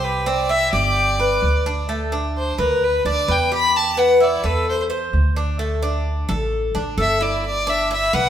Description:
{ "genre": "latin, Cuban son and guajira", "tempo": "130 BPM", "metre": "4/4", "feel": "straight", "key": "G major", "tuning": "A4 = 440 Hz", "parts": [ { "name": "clear violin", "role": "melody", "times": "0.0-8.3 s", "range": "Bb4 to B5", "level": "-20 LUFS", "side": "left 1 dB", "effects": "none" }, { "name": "Cuban tres", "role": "arpeggios", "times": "0.0-8.3 s", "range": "A3 to C5", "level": "-21 LUFS", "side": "equal", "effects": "none" }, { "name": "upright bass", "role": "bass", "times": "0.0-8.3 s", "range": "G1 to E2", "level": "-23 LUFS", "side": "equal", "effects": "none" } ], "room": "wet stone room reverb, RT60 1.5 s", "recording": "band playing live in one room", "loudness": "-17 LUFS", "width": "side -10 dB against mid", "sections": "0.0-7.4 A section", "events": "violin solo 0.0-7.4", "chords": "0.0 C; 1.0 G; 1.9 D5; 2.8 G/D; 3.7 Em; 4.7 Am/E; 5.6 D5; 7.4 G6" }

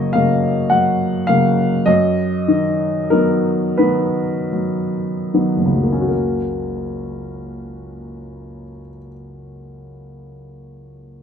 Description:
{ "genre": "classical, romantic nocturne for solo piano", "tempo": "24-36 BPM (dotted quarters)", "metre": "6/8", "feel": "rubato", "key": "F# major", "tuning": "A4 = 438 Hz", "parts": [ { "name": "warm upright piano", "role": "solo", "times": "0.0-11.2 s", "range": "F#1 to F#5", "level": "-17 LUFS", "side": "equal", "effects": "none" } ], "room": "light reverb", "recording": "minimal, uncompressed stereo recording", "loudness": "-15 LUFS", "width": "side -7 dB against mid", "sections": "0.0-6.1 A section; 6.1-10.5 B section", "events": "slowing down 0.0-6.1", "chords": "0.0 F#; 1.9 B/F#; 6.1 F#" }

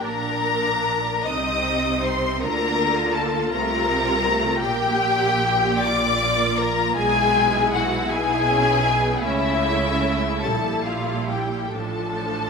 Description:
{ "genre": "classical, slow romantic movement for string orchestra", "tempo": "44-55 BPM (dotted quarters)", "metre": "6/8", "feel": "rubato", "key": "unclear", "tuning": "A4 = 440 Hz", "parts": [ { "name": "rich symphonic violin section", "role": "melody", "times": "0.0-12.5 s", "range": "E5 to Eb6", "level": "-24 LUFS", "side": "left 4 dB", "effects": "none" }, { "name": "warm symphonic violin section", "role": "second line", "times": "0.0-12.5 s", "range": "E4 to Eb5", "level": "-24 LUFS", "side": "left 4 dB", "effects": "none" }, { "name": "rich symphonic viola section", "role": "accompaniment", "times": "0.0-12.5 s", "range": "F3 to G4", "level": "-27 LUFS", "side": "right 3 dB", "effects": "none" }, { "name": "rich symphonic cello section", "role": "bass", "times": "0.0-12.5 s", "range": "A2 to D3", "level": "-29 LUFS", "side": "right 3 dB", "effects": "none" }, { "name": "rich symphonic double bass section", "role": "bass", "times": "0.0-12.5 s", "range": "A1 to D2", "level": "-30 LUFS", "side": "right 4 dB", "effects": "none" } ], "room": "wet scoring stage reverb, RT60 1.9 s", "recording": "minimal, uncompressed stereo recording", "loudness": "-19 LUFS", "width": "side -5 dB against mid", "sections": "0.0-12.5 A section", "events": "none", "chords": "0.0 Bb; 1.3 Cm; 2.4 Bb/D; 4.6 Gm/Bb; 7.0 E/B; 9.2 A/C#; 11.7 Dm/A" }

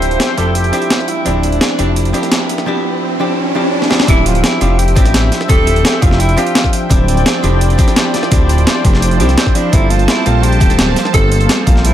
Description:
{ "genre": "liquid drum and bass", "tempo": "170 BPM", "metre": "4/4", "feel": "straight", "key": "D minor", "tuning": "A4 = 440 Hz", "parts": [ { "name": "mellow tenor saxophone", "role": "melody", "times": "0.0-11.9 s", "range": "C4 to C5", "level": "-19 LUFS", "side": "right 1 dB", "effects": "digital delay" }, { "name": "hollow-body jazz guitar", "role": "accompaniment", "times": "0.0-11.9 s", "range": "F3 to E5", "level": "-18 LUFS", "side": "equal", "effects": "low-pass filter, dub echo" }, { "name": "warm analog pad", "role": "sustained chords", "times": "0.0-11.9 s", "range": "F3 to A5", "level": "-20 LUFS", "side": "right 2 dB", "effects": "chorus, tremolo, sidechain pumping" }, { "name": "smooth synth bass", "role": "bass", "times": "0.0-11.9 s", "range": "D1 to C2", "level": "-14 LUFS", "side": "equal", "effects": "tube saturation" }, { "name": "breakbeat sampler-style drum kit", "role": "drums", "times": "0.0-11.9 s", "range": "hi-hat, snare drum", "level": "-16 LUFS", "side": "equal", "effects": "none" }, { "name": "riser and swell", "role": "sound effects", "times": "1.1-4.1 s", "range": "none", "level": "-21 LUFS", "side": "right 1 dB", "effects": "none" }, { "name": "electronic kick drum", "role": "drums", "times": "4.1-11.7 s", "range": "none", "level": "-12 LUFS", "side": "equal", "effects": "none" } ], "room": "light reverb", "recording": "none", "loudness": "-10 LUFS", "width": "side -11 dB against mid", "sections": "0.0-4.1 A section; 4.1-11.9 B section", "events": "build-up 0.0-4.1; riser 1.1-4.1; swell 3.4-4.1; drum fill 3.8; drop 4.1-11.9", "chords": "0.0 Dm11; 9.7 Gm11" }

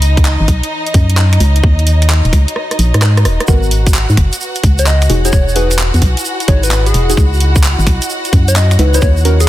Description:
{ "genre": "UK garage, two-step garage", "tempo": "130 BPM", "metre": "4/4", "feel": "swing 66% on 16ths", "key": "unclear", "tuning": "A4 = 442 Hz", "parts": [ { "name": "warm symphonic violin section", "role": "sustained chords", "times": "0.0-9.5 s", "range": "D#4 to F#5", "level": "-22 LUFS", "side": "left 1 dB", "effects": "sidechain pumping" }, { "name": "organ-like FM bass", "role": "bass", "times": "0.0-9.5 s", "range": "D#1 to G#2", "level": "-11 LUFS", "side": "equal", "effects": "sidechain pumping" }, { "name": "garage drum kit", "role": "drums", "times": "0.0-9.5 s", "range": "finger snaps, handclaps, hi-hat, rim click", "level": "-19 LUFS", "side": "right 1 dB", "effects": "overdrive, studio ambience" }, { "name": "warbly tape-like pad", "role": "texture", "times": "0.0-9.5 s", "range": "E3 to B5", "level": "-27 LUFS", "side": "equal", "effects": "chorus, built-in reverb, sidechain pumping" }, { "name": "electronic kick drum", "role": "drums", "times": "0.2-9.1 s", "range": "none", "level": "-11 LUFS", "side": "equal", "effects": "overdrive, studio ambience" }, { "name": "deep mellow chord stab", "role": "stabs", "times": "3.5-9.4 s", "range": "B3 to B4", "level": "-20 LUFS", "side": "equal", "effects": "chorus, digital delay" }, { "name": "tube shaker", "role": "percussion", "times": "3.5-9.5 s", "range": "none", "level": "-23 LUFS", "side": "right 4 dB", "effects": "none" }, { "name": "soft struck synth lead", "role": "melody", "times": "4.8-9.5 s", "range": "G#4 to D#5", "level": "-20 LUFS", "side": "left 2 dB", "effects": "chorus, digital delay" } ], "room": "digital ambience", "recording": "dense, heavily limited modern master", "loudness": "-9 LUFS", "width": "side -14 dB against mid", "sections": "0.0-9.5 A section", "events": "fade-in on ambient pad 0.0-9.5; kick drops out 2.6-3.5; drum fill 2.6-3.5", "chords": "0.0 C#m9; 1.6 D#m7; 3.5 G#m9; 5.1 Emaj7; 7.2 C#m9" }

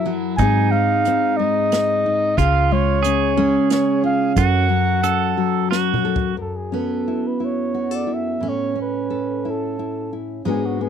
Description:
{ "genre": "acoustic folk-pop ballad", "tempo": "89 BPM", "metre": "3/4", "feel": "straight", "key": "F# harmonic minor, F# minor from 6.4 s", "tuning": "A4 = 439 Hz", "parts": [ { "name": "mellow flugelhorn", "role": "melody", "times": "0.0-10.9 s", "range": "F#4 to G#5", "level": "-22 LUFS", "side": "right 1 dB", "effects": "none" }, { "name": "pedal steel guitar", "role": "second line", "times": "0.0-6.4 s", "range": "D#4 to A4", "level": "-24 LUFS", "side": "right 14 dB", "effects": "none" }, { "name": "nylon-string guitar", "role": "accompaniment", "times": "0.0-10.9 s", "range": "F#2 to A4", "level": "-23 LUFS", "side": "left 11 dB", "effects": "none" }, { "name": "picked steel-string acoustic guitar", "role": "arpeggios", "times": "0.0-10.9 s", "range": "F#3 to A4", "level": "-23 LUFS", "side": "right 7 dB", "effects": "none" }, { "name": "vintage muted fingered electric bass", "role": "bass", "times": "0.4-5.6 s", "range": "C#2 to G#2", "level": "-21 LUFS", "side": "right 1 dB", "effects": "none" }, { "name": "unplugged drum kit", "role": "drums", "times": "0.4-6.3 s", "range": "hi-hat, kick drum, snare drum, toms", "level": "-24 LUFS", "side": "right 1 dB", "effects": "none" } ], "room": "light reverb", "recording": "dry, close 1970s-style studio recording", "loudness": "-17 LUFS", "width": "side -8 dB against mid", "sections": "0.0-6.4 A section; 6.4-10.9 B section", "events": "drum fill 5.7-6.4", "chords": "0.4 G#; 2.4 C#; 4.4 F#m; 6.4 F#m7; 8.4 A" }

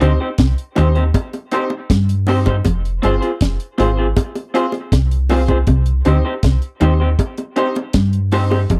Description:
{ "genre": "roots reggae", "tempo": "79 BPM", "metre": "4/4", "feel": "straight", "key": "unclear", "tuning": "A4 = 438 Hz", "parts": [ { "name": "electric guitar through a small old amp", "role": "accompaniment", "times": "0.0-8.6 s", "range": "C4 to C5", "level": "-24 LUFS", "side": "equal", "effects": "tape echo" }, { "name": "mellow electric guitar", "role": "riff", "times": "0.0-8.8 s", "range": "F2 to G3", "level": "-20 LUFS", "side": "equal", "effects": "analog chorus" }, { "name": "clear upright piano", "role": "stabs", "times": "0.0-8.6 s", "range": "C4 to C5", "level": "-24 LUFS", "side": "equal", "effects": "none" }, { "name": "soft dub sub bass", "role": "bass", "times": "0.0-8.8 s", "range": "F1 to G2", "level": "-19 LUFS", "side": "equal", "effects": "none" }, { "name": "deep reggae drum kit", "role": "drums", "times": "0.0-8.8 s", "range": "hi-hat, kick drum, snare drum", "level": "-20 LUFS", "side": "equal", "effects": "none" }, { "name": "bongos", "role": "percussion", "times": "0.8-8.8 s", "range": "none", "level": "-26 LUFS", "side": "equal", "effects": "none" } ], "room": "light reverb", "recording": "dry, close 1970s-style studio recording", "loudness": "-17 LUFS", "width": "mono", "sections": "0.0-8.8 A section", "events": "none", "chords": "0.0 Cm; 2.7 Fm; 5.7 Cm" }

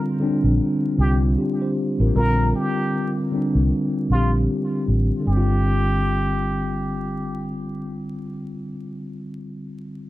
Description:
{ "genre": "lo-fi hip hop", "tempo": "77 BPM", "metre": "4/4", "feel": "swing 59% on 16ths", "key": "G minor", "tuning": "A4 = 440 Hz", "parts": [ { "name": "mellow tine electric piano", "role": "accompaniment", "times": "0.0-10.1 s", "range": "D3 to C5", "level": "-23 LUFS", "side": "left 1 dB", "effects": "medium stereo tremolo" }, { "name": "vintage muted fingered electric bass", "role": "bass", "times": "0.4-8.7 s", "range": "G1 to C2", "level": "-21 LUFS", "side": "equal", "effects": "none" }, { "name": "trumpet with plunger mute", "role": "melody", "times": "1.0-7.6 s", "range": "F4 to Bb4", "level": "-28 LUFS", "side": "equal", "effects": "analog delay" } ], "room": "moderate small room reverb, RT60 0.5 s", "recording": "dark, warm production, vinyl crackle, faint mains hum", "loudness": "-19 LUFS", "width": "side -16 dB against mid", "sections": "0.0-5.3 A section; 5.3-8.4 B section", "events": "none", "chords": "0.0 Gm11/Bb; 5.3 G7sus4" }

